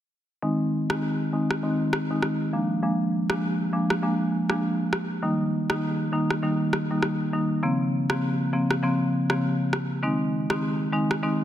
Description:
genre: afrobeats.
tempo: 100 BPM.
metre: 4/4.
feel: swing 58% on 16ths.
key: Ab major.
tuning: A4 = 440 Hz.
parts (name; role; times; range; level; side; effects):
marimba with medium mallets; accompaniment; 0.4-11.4 s; Db3 to Eb4; -24 LUFS; equal; low-pass filter.
electronic rim click; drums; 0.9-11.2 s; none; -30 LUFS; equal; soft clipping on snare.
room: light reverb, studio ambience.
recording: dense, heavily limited modern master.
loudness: -23 LUFS.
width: side -11 dB against mid.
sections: 0.4-11.4 A section.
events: kick muted 0.4-10.0; filter sweep on marimba 0.4-11.4; hi-hats muted 7.6-10.0.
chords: 0.4 Ab; 2.5 Bb7; 5.2 Eb; 7.6 Bbmadd9; 10.0 Ab.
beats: | 0.43 1.03 1.63 2.23 | 2.83 3.43 4.03 4.63 | 5.23 5.83 6.43 7.03 | 7.63 8.23 8.83 9.43 | 10.03 10.63 11.23.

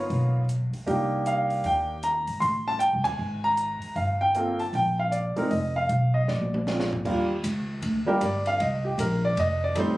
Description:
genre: jazz piano trio.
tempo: 155 BPM.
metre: 4/4.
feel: swing 64% on 8ths.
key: unclear.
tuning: A4 = 440 Hz.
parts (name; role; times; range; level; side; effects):
warm concert grand piano; melody; 0.0-10.0 s; G3 to C6; -25 LUFS; equal; none.
upright bass; bass; 0.0-10.0 s; F1 to Eb2; -28 LUFS; equal; none.
compact cocktail drum kit; drums; 0.1-9.9 s; crash cymbal, hi-hat, kick drum, ride cymbal, snare drum, toms; -38 LUFS; left 1 dB; none.
room: light reverb.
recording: recorded on a phone in the room, club ambience.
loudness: -23 LUFS.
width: side -18 dB against mid.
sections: 0.0-7.1 A section; 7.1-10.0 B section.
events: band accent 3.0; drum fill 6.3-7.1; grand piano solo 7.1-10.0.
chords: 0.0 G7#9b13 (rootless); 0.9 Cm7; 2.4 Adim; 3.2 Absus2; 4.0 Gm11; 5.5 Ebsus2/F; 6.3 Bb7; 7.1 Ebmaj7; 8.6 Bbsus2; 9.4 F9.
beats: 0.10 0.48 | 0.87 1.25 1.64 2.03 | 2.42 2.80 3.19 3.57 | 3.96 4.35 4.73 5.12 | 5.51 5.89 6.28 6.67 | 7.05 7.44 7.83 8.21 | 8.60 8.98 9.37 9.76.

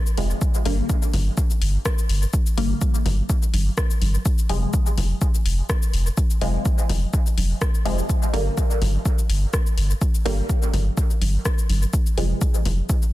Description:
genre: dub techno.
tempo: 125 BPM.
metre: 4/4.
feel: swing 54% on 16ths.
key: G phrygian.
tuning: A4 = 436 Hz.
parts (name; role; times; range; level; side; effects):
filtered dub chord stab; stabs; 0.0-13.1 s; C3 to Bb3; -29 LUFS; equal; chorus, phaser, sidechain pumping, dub echo.
punchy analog drum machine; drums; 0.1-13.1 s; hi-hat, rim click, shaker; -31 LUFS; left 3 dB; overdrive, dub echo.
warm sub bass; bass; 0.2-12.8 s; F1 to G1; -21 LUFS; equal; sidechain pumping.
electronic kick drum; drums; 0.4-13.0 s; none; -22 LUFS; equal; overdrive.
congas; percussion; 0.7-12.8 s; none; -33 LUFS; equal; sidechain pumping on perc, dub echo.
room: digital ambience.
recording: dense, heavily limited modern master.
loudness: -19 LUFS.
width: side -16 dB against mid.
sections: 0.0-13.1 A section.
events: filter sweep on synth stab 0.0-13.1.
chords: 0.4 Gm; 4.3 Fm; 8.1 Gm; 11.9 Fm.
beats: | 0.41 0.90 1.38 1.85 | 2.33 2.81 3.29 3.77 | 4.25 4.74 5.21 5.70 | 6.17 6.66 7.13 7.62 | 8.10 8.57 9.05 9.54 | 10.02 10.49 10.97 11.46 | 11.94 12.41 12.89.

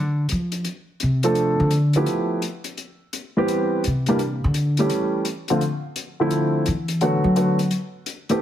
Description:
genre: jazz piano trio.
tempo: 170 BPM.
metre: 4/4.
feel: swing 65% on 8ths.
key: unclear.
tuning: A4 = 440 Hz.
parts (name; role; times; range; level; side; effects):
upright bass; bass; 0.0-7.7 s; C3 to F#3; -21 LUFS; equal; none.
hi-hat; drums; 0.3-8.4 s; none; -32 LUFS; left 5 dB; none.
warm baby grand piano; melody; 1.2-8.4 s; D3 to A4; -20 LUFS; equal; none.
room: light reverb.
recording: heavily compressed radio sound, multiband compression.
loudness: -19 LUFS.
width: side -10 dB against mid.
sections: 0.0-8.4 A section.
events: upright bass solo 0.0-8.4.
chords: 0.0 F5; 1.4 Dm7; 2.1 G13; 2.8 Cmaj7; 4.2 Dsus4; 4.9 A7; 5.6 Dm9; 7.0 Bm7; 7.7 N.C..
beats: 0.30 0.66 1.01 | 1.37 1.72 2.07 2.43 | 2.78 3.13 3.49 3.84 | 4.19 4.55 4.90 5.25 | 5.61 5.96 6.31 6.66 | 7.02 7.37 7.72 8.07.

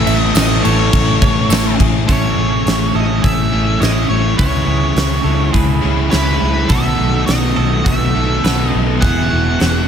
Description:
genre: rock, shoegaze and dream pop.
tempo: 104 BPM.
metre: 4/4.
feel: straight.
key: A lydian.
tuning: A4 = 440 Hz.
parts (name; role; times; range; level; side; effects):
octave-fuzz lead guitar; melody; 0.0-9.9 s; B4 to F#5; -21 LUFS; equal; distortion, analog delay.
direct-recorded clean electric guitar; arpeggios; 0.0-9.9 s; F#4 to E5; -28 LUFS; right 8 dB; wide subtle chorus, analog delay.
biting overdriven guitar; riff; 0.0-9.9 s; A2 to A4; -20 LUFS; left 10 dB; ensemble chorus.
crunchy overdriven guitar; riff; 0.0-2.1 s; A2 to A3; -22 LUFS; left 2 dB; none.
raw garage guitar; riff; 0.0-9.9 s; E2 to A4; -21 LUFS; right 11 dB; overdrive, reverse reverb.
vintage muted fingered electric bass; bass; 0.0-9.9 s; E1 to C#2; -17 LUFS; equal; none.
huge arena drum kit; drums; 0.1-9.7 s; crash cymbal, hi-hat, kick drum, snare drum; -18 LUFS; equal; none.
tambourine; percussion; 0.3-1.6 s; none; -27 LUFS; right 12 dB; none.
room: studio reverb.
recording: none.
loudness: -12 LUFS.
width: side -8 dB against mid.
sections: 0.0-2.1 A section; 2.1-9.9 B section.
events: none.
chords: 0.0 Amaj7; 4.4 C#m7; 6.7 B7sus4; 9.0 Eadd9.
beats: 0.35 0.93 1.50 | 2.08 2.66 3.24 3.81 | 4.39 4.97 5.55 6.13 | 6.71 7.29 7.86 8.44 | 9.02 9.60.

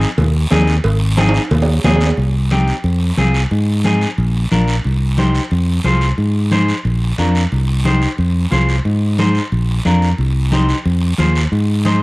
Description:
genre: latin, cumbia.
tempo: 180 BPM.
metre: 4/4.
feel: straight.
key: unclear.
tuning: A4 = 440 Hz.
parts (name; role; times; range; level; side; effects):
clean electric guitar; accompaniment; 0.0-12.0 s; C4 to C5; -21 LUFS; left 1 dB; none.
fingered electric bass; bass; 0.0-12.0 s; Ab1 to Ab2; -14 LUFS; equal; none.
guiro; percussion; 0.0-12.0 s; none; -27 LUFS; right 2 dB; none.
congas; percussion; 0.2-12.0 s; none; -20 LUFS; left 1 dB; none.
cowbell and timbales; percussion; 0.2-2.1 s; none; -21 LUFS; right 4 dB; none.
room: little or no reverb.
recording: home recording on cassette.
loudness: -13 LUFS.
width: side -22 dB against mid.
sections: 0.0-2.2 A section; 2.2-12.0 B section.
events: drum fill 1.2-2.2.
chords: 0.0 Ab; 2.2 Cm; 2.8 Fm; 3.5 Ab; 4.2 Bb; 4.8 Cm; 5.5 Fm; 6.2 Ab; 6.8 Bb; 7.5 Cm; 8.2 Fm; 8.9 Ab; 9.5 Bb; 10.2 Cm; 10.9 Fm; 11.5 Ab.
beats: 0.18 0.51 | 0.84 1.18 1.51 1.84 | 2.18 2.51 2.84 3.18 | 3.51 3.85 4.18 4.51 | 4.85 5.18 5.51 5.85 | 6.18 6.52 6.85 7.18 | 7.52 7.85 8.18 8.52 | 8.85 9.19 9.52 9.85 | 10.19 10.52 10.85 11.19 | 11.52 11.85.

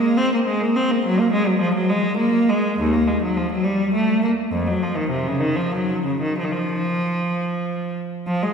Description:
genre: classical, baroque-style suite movement for unaccompanied cello.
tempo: 62-71 BPM (dotted quarters).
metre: 6/8.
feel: rubato.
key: unclear.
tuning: A4 = 440 Hz.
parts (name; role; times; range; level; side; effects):
clear cello; solo; 0.0-8.5 s; Eb2 to C4; -18 LUFS; equal; none.
room: wet concert hall reverb, RT60 2.1 s.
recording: recorded in a church or concert hall.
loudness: -18 LUFS.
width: side -6 dB against mid.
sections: 0.0-8.3 A section.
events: none.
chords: none.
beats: 0.18 | 1.04 1.89 | 2.79 3.66 | 4.54 5.44 | 6.38 7.33 | 8.29.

